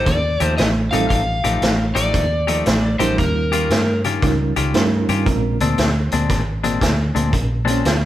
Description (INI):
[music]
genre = electric blues shuffle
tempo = 116 BPM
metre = 4/4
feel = swing 65% on 8ths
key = unclear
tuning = A4 = 441 Hz
[part]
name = overdriven slide guitar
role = melody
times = 0.0-4.0 s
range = Bb4 to F5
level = -22 LUFS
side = left 1 dB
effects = none
[part]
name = semi-hollow electric guitar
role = riff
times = 0.0-8.0 s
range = Bb2 to G4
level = -23 LUFS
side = left 4 dB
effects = none
[part]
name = vintage muted fingered electric bass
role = bass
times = 0.0-8.1 s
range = Ab1 to G2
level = -21 LUFS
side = equal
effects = none
[part]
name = vintage drum kit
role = drums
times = 0.1-8.0 s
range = hi-hat, kick drum, snare drum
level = -20 LUFS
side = equal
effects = none
[part]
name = barky reed electric piano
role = accompaniment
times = 0.9-8.0 s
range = G3 to Bb4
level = -23 LUFS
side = right 4 dB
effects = overdrive, fast tremolo
[sound]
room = moderate stone room reverb, RT60 1.3 s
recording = band playing live in one room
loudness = -16 LUFS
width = side -13 dB against mid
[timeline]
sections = 0.0-7.3 A section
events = none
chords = 0.0 F9; 3.2 Eb9; 5.3 Bb9